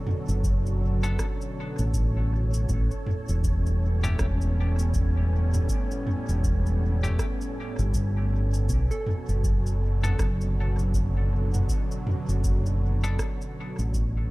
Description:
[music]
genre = ambient dub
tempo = 80 BPM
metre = 4/4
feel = swing 59% on 16ths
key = B minor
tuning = A4 = 440 Hz
[part]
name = warm analog pad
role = sustained chords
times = 0.0-14.3 s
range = A2 to A4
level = -33 LUFS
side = right 1 dB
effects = chorus
[part]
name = wind-like tuned noise texture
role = texture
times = 0.0-14.3 s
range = C#4 to C#5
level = -42 LUFS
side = left 1 dB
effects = built-in reverb
[part]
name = organic electronic drum kit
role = drums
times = 0.1-14.1 s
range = rim click, shaker, toms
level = -32 LUFS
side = equal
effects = none
[part]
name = fingered electric bass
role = bass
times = 0.3-14.3 s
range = E1 to B1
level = -24 LUFS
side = equal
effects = none
[part]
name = electronic kick drum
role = drums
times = 0.4-14.1 s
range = none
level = -29 LUFS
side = equal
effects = none
[part]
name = semi-hollow electric guitar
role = stabs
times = 1.0-13.3 s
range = A3 to A4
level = -39 LUFS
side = left 3 dB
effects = harmonic tremolo, dub echo
[part]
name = soft synth bell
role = arpeggios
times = 8.9-14.3 s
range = A4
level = -40 LUFS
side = right 2 dB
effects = chorus, vintage 12-bit sampler grit, dub echo
[sound]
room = digital ambience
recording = none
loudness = -23 LUFS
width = side -20 dB against mid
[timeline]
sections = 0.0-14.3 A section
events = fade-out 12.7-14.3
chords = 0.0 Bm7; 2.7 A7; 8.7 Bm7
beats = 0.44 1.19 1.94 | 2.69 3.44 4.19 4.94 | 5.69 6.44 7.19 7.94 | 8.69 9.44 10.19 10.94 | 11.69 12.44 13.19 13.94

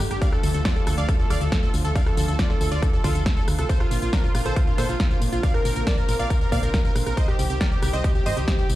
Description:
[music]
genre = uplifting trance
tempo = 138 BPM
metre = 4/4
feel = straight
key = unclear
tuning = A4 = 437 Hz
[part]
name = lush unison pad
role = sustained chords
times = 0.0-8.8 s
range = D3 to G4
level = -32 LUFS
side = equal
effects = chorus, sidechain pumping
[part]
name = solid FM bass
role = bass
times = 0.0-8.8 s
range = D1 to Bb2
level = -25 LUFS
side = equal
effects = sidechain pumping
[part]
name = big-room dance drum kit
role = drums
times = 0.0-8.8 s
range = hi-hat, rim click, snare drum, tambourine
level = -31 LUFS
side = equal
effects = overdrive
[part]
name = supersaw stab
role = melody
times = 0.1-8.7 s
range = D4 to F5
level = -29 LUFS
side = right 1 dB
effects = sidechain pumping, dub echo
[part]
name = plucky unison lead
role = second line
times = 0.1-8.7 s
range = F4 to F5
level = -33 LUFS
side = equal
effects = sidechain pumping, ping-pong delay
[part]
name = electronic kick drum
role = drums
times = 0.2-8.6 s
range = none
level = -22 LUFS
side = equal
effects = overdrive
[sound]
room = digital ambience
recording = played on a big sound system in a bare room, large studio reverb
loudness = -20 LUFS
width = side -15 dB against mid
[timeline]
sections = 0.0-8.8 A section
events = none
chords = 0.2 Dm; 3.7 Bbadd9; 7.2 Cm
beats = | 0.22 0.65 1.09 1.52 | 1.96 2.39 2.83 3.26 | 3.69 4.13 4.56 5.00 | 5.43 5.87 6.30 6.74 | 7.17 7.61 8.04 8.48

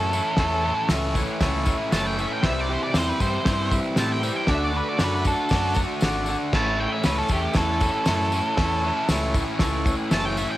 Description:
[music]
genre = garage rock duo or trio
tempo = 117 BPM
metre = 4/4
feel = straight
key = unclear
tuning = A4 = 437 Hz
[part]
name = octave-fuzz lead guitar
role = melody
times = 0.0-10.6 s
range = G4 to A5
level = -26 LUFS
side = right 1 dB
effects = distortion
[part]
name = combo organ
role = sustained chords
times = 0.0-10.5 s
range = E4 to E5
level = -32 LUFS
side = equal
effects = none
[part]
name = overdriven electric guitar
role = riff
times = 0.0-10.6 s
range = A2 to F#4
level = -26 LUFS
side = equal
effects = none
[part]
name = growling fingered electric bass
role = bass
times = 0.0-10.4 s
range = F#1 to A2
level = -28 LUFS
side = equal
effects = overdrive
[part]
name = tambourine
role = percussion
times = 0.1-10.5 s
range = none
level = -38 LUFS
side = left 4 dB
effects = none
[part]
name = cloth-damped thuddy drum kit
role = drums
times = 0.4-10.2 s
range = crash cymbal, hi-hat, kick drum, snare drum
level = -25 LUFS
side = equal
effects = cassette tape
[sound]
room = light reverb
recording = home recording on cassette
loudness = -20 LUFS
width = side -15 dB against mid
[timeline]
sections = 0.0-10.6 A section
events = none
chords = 0.0 A; 2.4 C; 4.5 D; 6.5 A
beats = | 0.38 0.90 1.41 1.92 | 2.44 2.95 3.46 3.97 | 4.49 5.00 5.51 6.02 | 6.53 7.05 7.56 8.07 | 8.58 9.10 9.61 10.12

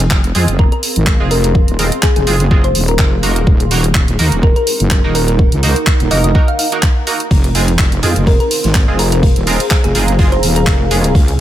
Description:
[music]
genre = bass house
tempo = 125 BPM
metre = 4/4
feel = swing 55% on 16ths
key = unclear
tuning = A4 = 440 Hz
[part]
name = wobble bass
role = bass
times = 0.0-11.4 s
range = Eb1 to F2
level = -14 LUFS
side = equal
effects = chorus, overdrive, sidechain pumping
[part]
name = garage drum kit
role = drums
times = 0.0-11.4 s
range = handclaps, hi-hat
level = -19 LUFS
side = right 1 dB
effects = none
[part]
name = granular cloud pad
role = texture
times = 0.5-11.4 s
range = C4 to C6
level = -23 LUFS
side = equal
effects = built-in reverb, sidechain pumping
[part]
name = electronic kick drum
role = drums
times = 0.1-11.3 s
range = none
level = -12 LUFS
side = equal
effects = overdrive
[part]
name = band-passed chord stab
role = stabs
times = 0.3-11.4 s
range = Ab3 to C5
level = -22 LUFS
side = right 3 dB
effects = lush chorus, sidechain pumping, ping-pong delay
[part]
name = thumb-piano-like synth pluck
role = melody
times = 0.6-11.0 s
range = Ab4 to F5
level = -20 LUFS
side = left 1 dB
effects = wide subtle chorus, ping-pong delay
[part]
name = dark analog pad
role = sustained chords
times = 8.2-11.4 s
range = Ab4 to Db6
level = -24 LUFS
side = left 2 dB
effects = chorus, sidechain pumping
[part]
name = raw garage drum kit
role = drums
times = 7.3-11.4 s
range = hi-hat, snare drum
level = -28 LUFS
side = left 2 dB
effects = sidechain pumping on hats, high-pass filter on hats, high-pass filter on snare, high-pass filter on room
[sound]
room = little or no reverb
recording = none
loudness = -10 LUFS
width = side -12 dB against mid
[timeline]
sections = 0.0-11.4 A section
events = none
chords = 0.0 Fm; 3.5 Ebm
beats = 0.11 0.59 1.07 | 1.55 2.03 2.51 2.99 | 3.47 3.95 4.43 4.91 | 5.39 5.87 6.35 6.83 | 7.31 7.79 8.27 8.75 | 9.23 9.71 10.19 10.67 | 11.15

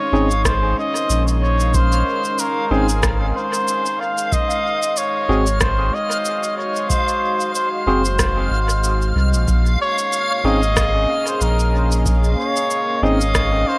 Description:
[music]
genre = ambient dub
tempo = 93 BPM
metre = 4/4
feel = swing 56% on 16ths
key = Bb minor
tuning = A4 = 442 Hz
[part]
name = trumpet with cup mute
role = melody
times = 0.0-13.8 s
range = Ab4 to F5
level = -23 LUFS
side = equal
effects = dub echo
[part]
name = deep dark ambient pad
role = sustained chords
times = 0.0-13.8 s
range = Ab3 to Eb5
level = -30 LUFS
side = equal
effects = chorus, built-in reverb
[part]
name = backwards swelling texture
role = texture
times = 0.3-13.8 s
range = F5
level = -31 LUFS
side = equal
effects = built-in reverb
[part]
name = bright tine electric piano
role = stabs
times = 0.1-13.2 s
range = C4 to Ab4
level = -28 LUFS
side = equal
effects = dub echo
[part]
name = soft dub sub bass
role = bass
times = 0.1-13.6 s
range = Gb1 to C2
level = -21 LUFS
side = equal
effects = tube saturation
[part]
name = electronic shaker and rim click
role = drums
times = 0.3-13.5 s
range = none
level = -28 LUFS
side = equal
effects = dub echo
[part]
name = electronic kick drum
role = drums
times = 0.5-13.5 s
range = none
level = -25 LUFS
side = equal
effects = none
[sound]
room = light reverb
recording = none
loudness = -19 LUFS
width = mono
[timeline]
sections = 0.0-13.8 A section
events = none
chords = 0.0 Bbm11; 4.3 Ab7; 9.5 Bbm11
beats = 0.45 1.10 | 1.74 2.39 3.03 3.68 | 4.32 4.97 5.61 6.26 | 6.90 7.55 8.19 8.84 | 9.48 10.13 10.77 11.42 | 12.06 12.71 13.35

